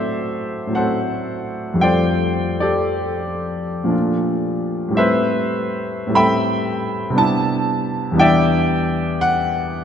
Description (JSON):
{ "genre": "classical, impressionist solo piano", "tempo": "49-59 BPM", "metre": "3/4", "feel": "rubato", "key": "unclear", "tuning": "A4 = 440 Hz", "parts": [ { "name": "clear concert grand piano", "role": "solo", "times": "0.0-9.8 s", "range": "E2 to B5", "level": "-17 LUFS", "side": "equal", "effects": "none" } ], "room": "wet concert hall reverb, RT60 2.5 s", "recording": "none", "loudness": "-17 LUFS", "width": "side -8 dB against mid", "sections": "0.0-9.8 A section", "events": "none", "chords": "0.0 Am6; 1.8 F69; 3.9 Bbmaj7; 5.0 Am9; 7.2 Cmaj9; 8.2 Em7" }